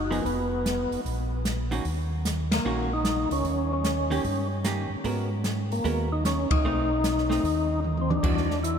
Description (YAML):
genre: soul jazz organ trio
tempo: 150 BPM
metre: 4/4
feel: swing 66% on 8ths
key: unclear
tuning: A4 = 440 Hz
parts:
  - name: percussive tonewheel organ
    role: melody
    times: 0.0-8.8 s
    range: A#3 to E4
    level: -28 LUFS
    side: left 1 dB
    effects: overdrive, chorus vibrato, slow rotary speaker
  - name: mellow tonewheel organ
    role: bass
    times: 0.0-8.8 s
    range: E#1 to G#2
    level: -29 LUFS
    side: equal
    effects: chorus vibrato, slow rotary speaker
  - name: vintage hollow-body jazz guitar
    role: accompaniment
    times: 0.1-8.5 s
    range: D#3 to A#4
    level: -33 LUFS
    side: right 2 dB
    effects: none
  - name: open jazz drum kit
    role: drums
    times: 0.1-8.8 s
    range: crash cymbal, hi-hat, kick drum, ride cymbal, snare drum, toms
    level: -30 LUFS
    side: equal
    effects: none
room: wet cathedral reverb, RT60 5.7 s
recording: in a vast, echoing space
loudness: -24 LUFS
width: side -7 dB against mid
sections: 0.0-8.2 A section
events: band accent 2.4, 6.4; drum fill 7.8-8.2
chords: 0.2 N.C.; 1.0 D#m7; 3.4 D#7; 5.0 G#m9; 6.6 B7b9; 8.2 Em9